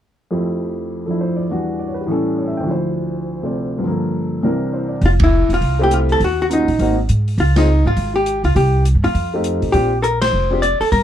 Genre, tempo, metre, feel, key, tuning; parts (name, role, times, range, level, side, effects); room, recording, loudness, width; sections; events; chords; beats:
jazz, small-group swing and bop; 204 BPM; 4/4; swing 62% on 8ths; F major; A4 = 441 Hz
clear upright piano; accompaniment; 0.3-10.6 s; C2 to G5; -19 LUFS; equal
upright bass; bass; 5.0-11.0 s; E1 to Ab2; -17 LUFS; equal
open jazz drum kit; drums; 5.0-11.0 s; hi-hat, kick drum, ride cymbal, snare drum; -23 LUFS; equal
vintage hollow-body jazz guitar; melody; 5.1-11.0 s; Eb4 to D5; -17 LUFS; left 1 dB
light reverb; dark, warm production; -15 LUFS; side -10 dB against mid
0.3-5.0 A section; 5.0-11.0 B section
band accent 5.2, 7.5, 10.2
0.3 Fmaj7; 1.5 Em7; 2.1 A7; 2.7 Dm7; 3.8 Gm7; 4.4 C7; 5.0 Fmaj7; 6.2 Ebm7; 6.8 Ab7; 7.4 Db; 8.6 Cm; 9.1 F7; 9.7 Bb6
| 0.30 0.60 0.89 1.19 | 1.48 1.78 2.07 2.37 | 2.66 2.96 3.25 3.55 | 3.84 4.14 4.43 4.73 | 5.02 5.32 5.61 5.91 | 6.20 6.49 6.79 7.08 | 7.38 7.67 7.97 8.26 | 8.56 8.85 9.15 9.44 | 9.73 10.03 10.32 10.62 | 10.91